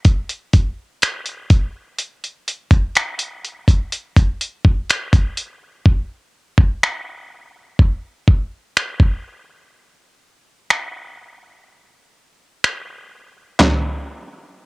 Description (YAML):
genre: R&B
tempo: 62 BPM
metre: 4/4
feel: straight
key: none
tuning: none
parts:
  - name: dusty soul sampler-style drum kit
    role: drums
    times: 0.0-13.8 s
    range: finger snaps, handclaps, hi-hat, kick drum, snare drum, toms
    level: -14 LUFS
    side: equal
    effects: overdrive
room: little or no reverb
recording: home recording on cassette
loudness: -16 LUFS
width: side -28 dB against mid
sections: 0.0-13.6 A section; 13.6-14.7 B section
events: none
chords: none